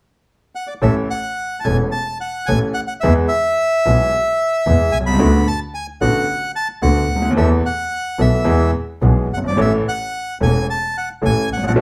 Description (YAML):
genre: tango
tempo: 110 BPM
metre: 4/4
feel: rubato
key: A major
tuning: A4 = 438 Hz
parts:
  - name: bandoneon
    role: melody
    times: 0.6-11.7 s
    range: D5 to B5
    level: -23 LUFS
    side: equal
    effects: none
  - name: bright grand piano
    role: accompaniment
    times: 0.8-11.8 s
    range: E1 to A4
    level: -21 LUFS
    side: equal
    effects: none
  - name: bright double bass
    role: bass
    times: 0.8-11.8 s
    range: E1 to E2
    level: -20 LUFS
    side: equal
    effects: none
room: wet studio reverb, RT60 0.7 s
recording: heard from further back in the room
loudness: -18 LUFS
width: mono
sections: 0.8-11.8 A section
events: none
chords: 0.0 N.C.; 0.8 A; 3.0 E; 5.2 D6; 7.4 Esus4; 8.5 E; 9.6 A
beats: 0.28 | 0.83 1.38 1.93 2.49 | 3.03 3.58 4.12 4.67 | 5.21 5.75 6.28 6.83 | 7.37 7.92 8.46 9.02 | 9.58 10.13 10.68 11.22 | 11.77